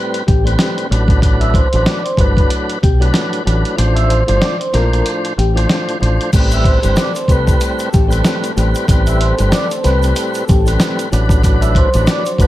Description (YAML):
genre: hip hop, boom-bap hip-hop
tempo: 94 BPM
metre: 4/4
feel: swing 58% on 16ths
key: A dorian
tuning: A4 = 439 Hz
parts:
  - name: tonewheel organ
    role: accompaniment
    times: 0.0-12.5 s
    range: A2 to C5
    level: -19 LUFS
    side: equal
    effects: overdrive, fast rotary speaker, high-pass filter, low-pass filter, plate reverb
  - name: dusty soul sampler-style drum kit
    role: drums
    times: 0.1-12.5 s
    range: crash cymbal, hi-hat, kick drum, snare drum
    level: -15 LUFS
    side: equal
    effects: none
  - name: vibraphone with soft mallets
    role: melody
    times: 0.3-12.5 s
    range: G4 to E6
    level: -21 LUFS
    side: equal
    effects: high-pass filter, low-pass filter, tape echo, plate reverb
  - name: deep dub fingered electric bass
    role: bass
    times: 0.3-12.5 s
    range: G1 to C2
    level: -15 LUFS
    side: equal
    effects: none
  - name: lush unison pad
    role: sustained chords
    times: 6.3-12.5 s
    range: F#3 to D5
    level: -28 LUFS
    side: equal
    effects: chorus, high-pass filter, low-pass filter, plate reverb
  - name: egg shaker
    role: percussion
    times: 6.3-12.5 s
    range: none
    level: -35 LUFS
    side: right 6 dB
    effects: none
room: light reverb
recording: vinyl crackle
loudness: -12 LUFS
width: side -15 dB against mid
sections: 0.0-6.3 A section; 6.3-12.5 A section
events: kick muted 3.8-6.3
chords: 0.0 Am9; 0.9 Gmaj7 (rootless); 3.8 Bbmaj9; 6.3 Am9; 11.1 Gmaj7 (rootless)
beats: 0.58 | 1.22 1.86 2.50 3.14 | 3.78 4.42 5.05 5.69 | 6.33 6.97 7.61 8.24 | 8.88 9.52 10.16 10.80 | 11.44 12.07